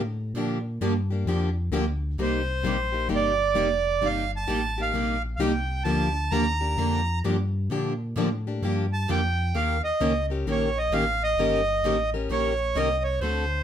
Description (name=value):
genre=acoustic string swing (jazz manouche)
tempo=130 BPM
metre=4/4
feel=swing 64% on 8ths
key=unclear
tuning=A4 = 436 Hz
part: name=sub bass with octave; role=bass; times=0.0-13.6 s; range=F1 to Bb2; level=-28 LUFS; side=left 1 dB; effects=none
part: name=picked steel-string acoustic guitar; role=accompaniment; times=0.3-13.4 s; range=C3 to Bb4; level=-32 LUFS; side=right 5 dB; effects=none
part: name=picked plugged-in steel-string acoustic guitar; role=accompaniment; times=0.4-13.4 s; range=C3 to Bb4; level=-29 LUFS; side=left 4 dB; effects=none
part: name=accordion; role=melody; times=2.2-13.6 s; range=C5 to Bb5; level=-26 LUFS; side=right 3 dB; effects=none
room=moderate studio reverb, RT60 0.6 s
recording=none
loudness=-23 LUFS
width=side -9 dB against mid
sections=0.0-13.6 A section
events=none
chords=0.0 Gm9; 2.2 Cm9; 5.9 Gm9; 9.5 Eb7